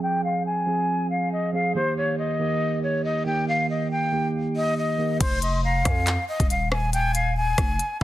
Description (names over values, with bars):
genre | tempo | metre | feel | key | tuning
hip hop, drill | 139 BPM | 4/4 | half-time | F minor | A4 = 443 Hz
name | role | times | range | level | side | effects
breathy hollow jazz flute | melody | 0.0-8.0 s | C5 to Ab5 | -25 LUFS | left 1 dB | low-pass filter, tape echo
mellow tine electric piano | accompaniment | 0.0-5.2 s | Eb3 to Ab4 | -25 LUFS | right 2 dB | wide subtle chorus, low-pass filter
concert flute | second line | 5.2-8.0 s | Ab5 to C6 | -33 LUFS | left 2 dB | tape echo
growling 808-style bass | bass | 5.2-8.0 s | Eb1 to F2 | -25 LUFS | equal | none
drill drum kit | drums | 5.2-8.0 s | crash cymbal, handclaps, hi-hat, kick drum, rim click | -25 LUFS | equal | none
room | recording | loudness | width
light reverb | dense, heavily limited modern master | -22 LUFS | side -14 dB against mid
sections
0.0-5.2 A section; 5.2-8.0 B section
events
none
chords
0.0 Fm; 1.8 Eb; 5.2 Fm